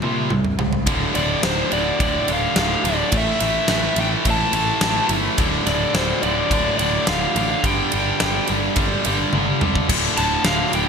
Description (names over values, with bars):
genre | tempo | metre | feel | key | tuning
hard rock | 106 BPM | 4/4 | straight | unclear | A4 = 440 Hz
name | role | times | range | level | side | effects
cranked stack guitar | riff | 0.0-10.9 s | D2 to C4 | -24 LUFS | right 13 dB | overdrive
tight distorted guitar | riff | 0.0-10.9 s | D2 to C4 | -24 LUFS | left 14 dB | distortion
picked electric bass | bass | 0.0-10.9 s | D1 to Bb2 | -26 LUFS | equal | none
huge arena drum kit | drums | 0.0-10.9 s | crash cymbal, kick drum, ride cymbal, snare drum, toms | -22 LUFS | equal | gated reverb
bluesy overdriven lead guitar | melody | 1.2-10.9 s | C5 to A5 | -23 LUFS | equal | distortion
room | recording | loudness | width
light reverb, small room ambience | bright 1980s-style digital production | -17 LUFS | side -6 dB against mid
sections
0.9-10.9 A section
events
drum fill 0.0-0.9, 9.3-9.9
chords
0.0 C5; 0.9 D5; 3.1 A5; 5.4 D5; 7.6 G5; 9.9 D5